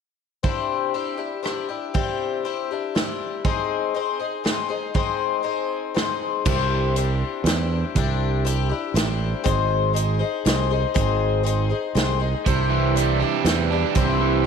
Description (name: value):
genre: folk rock and heartland rock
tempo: 120 BPM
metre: 3/4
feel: straight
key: C major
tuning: A4 = 442 Hz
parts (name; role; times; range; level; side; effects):
- picked twelve-string acoustic guitar; accompaniment; 0.4-14.5 s; C3 to C5; -24 LUFS; left 9 dB; none
- natural country drum kit; drums; 0.4-14.1 s; crash cymbal, hi-hat, kick drum, rim click, snare drum; -25 LUFS; right 2 dB; none
- fingered electric bass; bass; 6.5-14.5 s; Ab1 to E2; -22 LUFS; right 3 dB; none
- overdriven electric guitar; riff; 12.5-14.5 s; C3 to D4; -22 LUFS; right 16 dB; none
room: light reverb, small room reverb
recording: 1960s-style stereo with parts hard left and right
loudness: -20 LUFS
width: side -6 dB against mid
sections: 0.4-6.5 A section; 6.5-14.5 B section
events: none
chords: 0.4 Cadd9; 3.4 Ab; 6.5 Cadd9; 9.5 Ab; 12.5 Cadd9